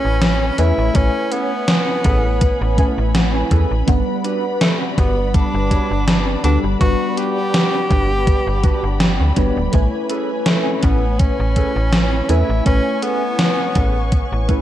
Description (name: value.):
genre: vaporwave.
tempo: 82 BPM.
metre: 4/4.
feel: swing 54% on 16ths.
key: A major.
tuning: A4 = 439 Hz.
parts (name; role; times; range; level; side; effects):
breathy tenor saxophone; melody; 0.0-14.6 s; A3 to G4; -23 LUFS; equal; tape echo.
FM electric piano with soft pad layer; accompaniment; 0.0-14.6 s; G3 to G#5; -23 LUFS; left 1 dB; phaser, analog chorus, tape echo.
dark studio string section; sustained chords; 0.0-14.6 s; G3 to C#6; -30 LUFS; left 2 dB; none.
mellow electric guitar; riff; 0.0-14.6 s; C#4 to A5; -29 LUFS; right 2 dB; analog chorus, tape echo.
slap-like FM bass; bass; 0.0-14.6 s; D1 to E2; -18 LUFS; equal; none.
gated 80s digital drum machine; drums; 0.2-14.6 s; hi-hat, snare drum; -19 LUFS; equal; gated reverb, gated reverb snare.
electronic kick drum; drums; 1.0-14.6 s; none; -17 LUFS; equal; none.
room: light reverb.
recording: cassette tape.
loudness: -15 LUFS.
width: side -12 dB against mid.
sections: 0.0-14.6 A section.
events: clean electric guitar fill 2.4-3.9, 8.3-9.7.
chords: 0.0 Amaj9; 3.9 Gmaj7; 9.7 Amaj9.